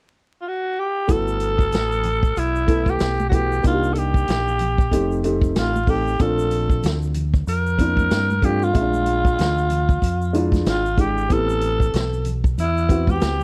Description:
hip hop, jazz-hop; 94 BPM; 4/4; swing 60% on 16ths; A4 = 445 Hz
growling alto saxophone; melody; 0.4-13.4 s; E4 to Bb4; -25 LUFS; equal
dark baby grand piano; accompaniment; 1.1-13.4 s; Ab3 to E5; -27 LUFS; equal
deep dub fingered electric bass; bass; 1.1-13.4 s; F1 to G2; -26 LUFS; equal
vintage drum kit; drums; 1.1-13.4 s; hi-hat, kick drum, snare drum; -24 LUFS; equal
egg shaker and congas; percussion; 1.1-13.4 s; -36 LUFS; equal
studio ambience; dry, close 1970s-style studio recording, vinyl crackle; -20 LUFS; mono
0.0-1.1 A section; 1.1-13.4 B section
0.0 N.C.; 1.1 Gmaj13; 3.6 Cm7; 4.9 F7; 6.2 Bbmaj9; 8.7 Bb7#11; 11.3 Am9
0.45 | 1.09 1.73 2.37 3.00 | 3.64 4.28 4.92 5.56 | 6.20 6.83 7.47 8.11 | 8.75 9.39 10.03 10.66 | 11.30 11.94 12.58 13.22

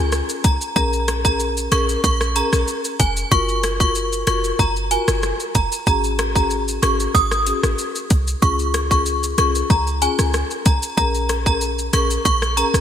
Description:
dancehall; 94 BPM; 4/4; straight; Bb minor; A4 = 440 Hz
clean 808-style bass; bass; 0.0-12.8 s; F1 to Db2; -22 LUFS; equal
island pop drum kit; drums; 0.1-12.8 s; hi-hat, kick drum, rim click, shaker; -22 LUFS; equal; overdrive, gated reverb
synth chime; melody; 0.4-12.7 s; Ab5 to Eb6; -21 LUFS; right 1 dB; ensemble chorus, phaser, tremolo, digital delay
marimba with medium mallets; accompaniment; 0.8-12.8 s; Db4 to Bb4; -25 LUFS; left 4 dB
moderate lush hall reverb, RT60 2.9 s; bright 1980s-style digital production; -16 LUFS; side -9 dB against mid
0.0-12.8 A section
0.0 N.C.; 0.8 Bbm7; 3.3 Gbmaj7; 5.9 Ab7sus4; 8.4 Db; 11.0 Bbm7
0.12 | 0.76 1.40 2.04 2.68 | 3.32 3.95 4.59 5.23 | 5.87 6.51 7.15 7.78 | 8.42 9.06 9.70 10.34 | 10.98 11.61 12.25

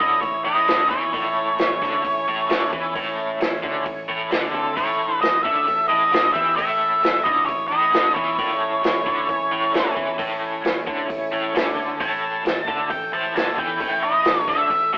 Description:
blues rock power trio and southern rock; 133 BPM; 4/4; straight; A major; A4 = 441 Hz
octave-fuzz lead guitar; melody; 0.0-15.0 s; A4 to A5; -20 LUFS; equal; distortion, tape echo
lightly driven lead guitar; second line; 0.0-15.0 s; C4 to C#5; -31 LUFS; right 1 dB
bright tonewheel organ; sustained chords; 0.0-15.0 s; A3 to D5; -30 LUFS; equal; slow rotary speaker, chorus vibrato
crunchy overdriven guitar; riff; 0.0-15.0 s; A2 to E3; -26 LUFS; equal; tremolo
picked electric bass; bass; 0.0-15.0 s; A1 to E2; -40 LUFS; equal
vintage drum kit; drums; 0.0-14.8 s; hi-hat, kick drum, snare drum; -25 LUFS; equal
moderate stone room reverb, RT60 1.0 s; band playing live in one room, telephone sound; -18 LUFS; side -24 dB against mid
0.0-15.0 A section
0.0 A
0.23 0.69 | 1.14 1.59 2.05 2.50 | 2.95 3.41 3.86 4.31 | 4.77 5.22 5.67 6.13 | 6.58 7.03 7.48 7.94 | 8.39 8.84 9.29 9.74 | 10.20 10.65 11.10 11.55 | 12.00 12.45 12.90 13.35 | 13.80 14.25 14.70

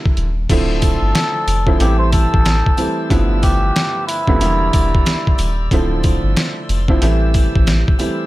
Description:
hip hop, boom-bap hip-hop; 92 BPM; 4/4; swing 59% on 16ths; D minor; A4 = 440 Hz
warm upright piano; accompaniment; 0.0-8.3 s; G2 to E4; -21 LUFS; right 2 dB; cassette tape, high-pass filter, low-pass filter
trip hop sampler-style drum kit; drums; 0.1-8.2 s; crash cymbal, hi-hat, kick drum, snare drum; -16 LUFS; equal
soft dub sub bass; bass; 0.2-7.8 s; D1 to A1; -17 LUFS; equal
bright tonewheel organ; sustained chords; 0.5-8.3 s; F3 to E6; -29 LUFS; left 1 dB; overdrive, slow rotary speaker, high-pass filter, low-pass filter
sleigh bells; percussion; 0.5-8.2 s; -35 LUFS; left 5 dB
trumpet with cup mute; melody; 0.8-5.7 s; E4 to C5; -21 LUFS; equal; high-pass filter, low-pass filter, ping-pong delay
studio reverb; -13 LUFS; side -17 dB against mid
0.5-8.3 A section
0.5 Dm9; 1.8 Am7; 3.1 G13; 4.4 Em7b5; 5.7 Dm9; 7.0 Am7
| 0.50 1.15 1.80 2.45 | 3.10 3.76 4.41 5.06 | 5.71 6.37 7.02 7.67

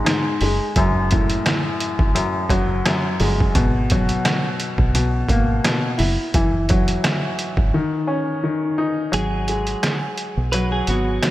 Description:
hip hop, boom-bap hip-hop; 86 BPM; 4/4; swing 55% on 16ths; A4 = 440 Hz
warm upright piano; accompaniment; 0.0-11.3 s; F#2 to E4; -21 LUFS; left 2 dB
trip hop sampler-style drum kit; drums; 0.1-11.3 s; hi-hat, kick drum, rim click, snare drum; -21 LUFS; equal; overdrive
deep dub fingered electric bass; bass; 0.4-11.2 s; F#1 to B1; -22 LUFS; equal
clean electric guitar; melody; 9.1-11.3 s; F#4 to B4; -25 LUFS; right 2 dB; analog chorus
finger snaps; percussion; 9.8-11.3 s; -37 LUFS; right 5 dB
moderate lush hall reverb, RT60 2.7 s; bright 1980s-style digital production; -17 LUFS; side -15 dB against mid
0.0-9.1 A section; 9.1-11.3 B section
break 7.7-9.1; kick muted 9.1-11.3
0.4 F#madd9; 3.6 G#m9; 6.0 N.C.; 7.7 C#sus2/D#; 9.1 G#m7
0.07 | 0.76 1.46 2.16 2.86 | 3.55 4.25 4.95 5.65 | 6.34 7.04 7.74 8.44 | 9.13 9.83 10.53 11.23

